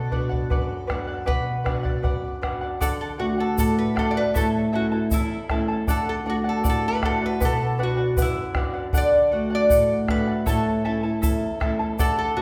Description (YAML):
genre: andean folk, Andean ensemble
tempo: 78 BPM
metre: 2/4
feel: straight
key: unclear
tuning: A4 = 440 Hz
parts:
  - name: lap resonator guitar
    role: melody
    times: 0.0-12.4 s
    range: E4 to D5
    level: -27 LUFS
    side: equal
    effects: none
  - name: charango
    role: accompaniment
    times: 0.0-12.4 s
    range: E4 to A5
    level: -32 LUFS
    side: equal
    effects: none
  - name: nylon-string guitar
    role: accompaniment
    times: 0.0-12.4 s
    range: E2 to F#4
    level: -28 LUFS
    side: equal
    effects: none
  - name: bombo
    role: percussion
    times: 0.1-12.2 s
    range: none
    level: -30 LUFS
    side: equal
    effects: none
  - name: tube shaker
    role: percussion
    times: 2.8-12.2 s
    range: none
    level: -40 LUFS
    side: equal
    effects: none
room: wet recital hall reverb, RT60 1.6 s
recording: recorded in a church or concert hall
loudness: -23 LUFS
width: mono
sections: 0.0-2.8 A section; 2.8-12.4 B section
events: none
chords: 0.0 Bm; 2.8 D; 4.4 A; 5.9 D; 7.4 Bm; 9.0 D; 10.5 A